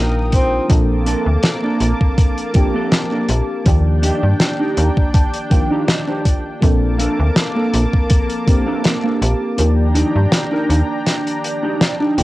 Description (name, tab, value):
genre	vaporwave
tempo	81 BPM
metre	4/4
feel	swing 54% on 16ths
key	Bb major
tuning	A4 = 440 Hz
part	mellow FM electric piano	accompaniment	0.0-12.2 s	Eb3 to D5	-23 LUFS	equal	lush chorus, cassette tape, tape echo
part	lush unison pad	sustained chords	0.0-12.2 s	Bb3 to Eb6	-24 LUFS	equal	chorus, cassette tape
part	slap-like FM bass	bass	0.0-12.2 s	Eb1 to G2	-16 LUFS	equal	none
part	mellow tenor saxophone	melody	0.3-0.7 s	C4	-22 LUFS	equal	cassette tape, tape echo
part	electronic kick drum	drums	0.3-8.6 s	none	-14 LUFS	equal	overdrive, cassette tape
part	warm soul drum kit	drums	0.3-12.2 s	hi-hat, snare drum	-19 LUFS	equal	cassette tape
part	mellow electric guitar	riff	1.1-12.2 s	Bb3 to Bb5	-21 LUFS	right 1 dB	analog chorus, cassette tape, tape echo
room	light reverb, small room ambience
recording	home recording on cassette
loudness	-14 LUFS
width	side -17 dB against mid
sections	0.0-12.2 A section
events	clean electric guitar fill 4.4-6.6, 11.4-12.2; kick drops out 9.6-12.2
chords	0.0 Ebmaj7; 0.7 Bbmaj7; 3.7 Ebmaj7; 6.6 Bbmaj7; 9.6 Ebmaj7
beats	| 0.70 1.44 2.18 2.92 | 3.66 4.40 5.14 5.88 | 6.62 7.37 8.11 8.85 | 9.59 10.33 11.07 11.81